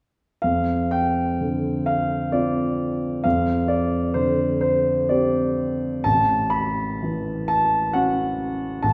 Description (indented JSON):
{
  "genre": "classical, impressionist solo piano",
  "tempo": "64 BPM",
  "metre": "3/4",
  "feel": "uneven beats, rubato",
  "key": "F major",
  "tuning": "A4 = 435 Hz",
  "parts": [
    { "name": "warm concert grand piano", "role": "solo", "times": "0.4-8.9 s", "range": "A1 to B5", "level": "-22 LUFS", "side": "equal", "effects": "none" }
  ],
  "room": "wet recital hall reverb, RT60 1.5 s",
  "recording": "recorded in a church or concert hall",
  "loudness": "-22 LUFS",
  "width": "mono",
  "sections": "0.4-8.9 A section",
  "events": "none",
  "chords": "0.4 F5; 6.0 A6"
}